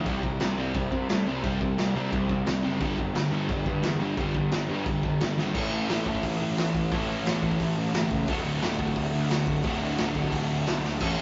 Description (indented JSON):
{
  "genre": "punk rock",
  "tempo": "175 BPM",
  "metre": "4/4",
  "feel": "straight",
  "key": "D major from 5.6 s",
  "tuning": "A4 = 440 Hz",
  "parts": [
    { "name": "crunchy overdriven guitar", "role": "riff", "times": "0.0-11.2 s", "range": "D2 to A4", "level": "-35 LUFS", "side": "equal", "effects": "none" },
    { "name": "overdriven semi-hollow guitar", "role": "riff", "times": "0.0-11.2 s", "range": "D2 to A4", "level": "-34 LUFS", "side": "equal", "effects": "none" },
    { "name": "sludgy distorted guitar", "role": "riff", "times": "0.0-11.2 s", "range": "D2 to A4", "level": "-34 LUFS", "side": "equal", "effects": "overdrive" },
    { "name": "fuzz picked electric bass", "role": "bass", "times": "0.0-11.2 s", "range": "D1 to C3", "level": "-34 LUFS", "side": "equal", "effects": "overdrive" },
    { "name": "raw garage drum kit", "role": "drums", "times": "0.1-11.1 s", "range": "crash cymbal, hi-hat, kick drum, snare drum", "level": "-33 LUFS", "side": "equal", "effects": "none" }
  ],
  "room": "light reverb",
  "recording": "rough rehearsal-room recording, nothing above 7.6 kHz",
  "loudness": "-27 LUFS",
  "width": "mono",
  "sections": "0.0-5.6 A section; 5.6-11.2 B section",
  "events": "drum fill 5.4, 10.8",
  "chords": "0.1 C5; 2.8 G5; 5.6 A; 8.3 D"
}